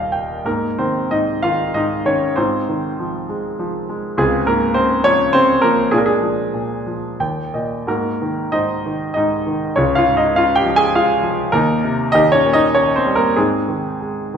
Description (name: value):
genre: classical, lyrical solo piano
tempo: 88-106 BPM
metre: 3/4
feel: rubato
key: Ab major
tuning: A4 = 440 Hz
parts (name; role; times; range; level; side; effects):
- clear concert grand piano; solo; 0.0-14.4 s; Eb1 to Ab5; -15 LUFS; equal; none
room: wet recital hall reverb, RT60 1.5 s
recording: recorded in a church or concert hall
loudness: -15 LUFS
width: side -7 dB against mid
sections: 0.5-14.4 A section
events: grand piano fill 0.0-0.5, 6.9-7.9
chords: 0.5 Abadd9; 2.4 Fm7/Ab; 4.2 Dbmaj7; 5.9 Bb7; 7.2 Eb; 7.9 Ab7; 9.8 Dbadd9; 11.5 Cm7/Eb; 12.1 Eb; 13.4 Ab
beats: | 0.46 1.12 1.76 | 2.37 2.99 3.59 | 4.16 4.74 5.33 | 5.92 6.54 7.19 | 7.87 8.53 9.16 | 9.76 10.35 10.94 | 11.53 12.14 12.75 | 13.37 14.00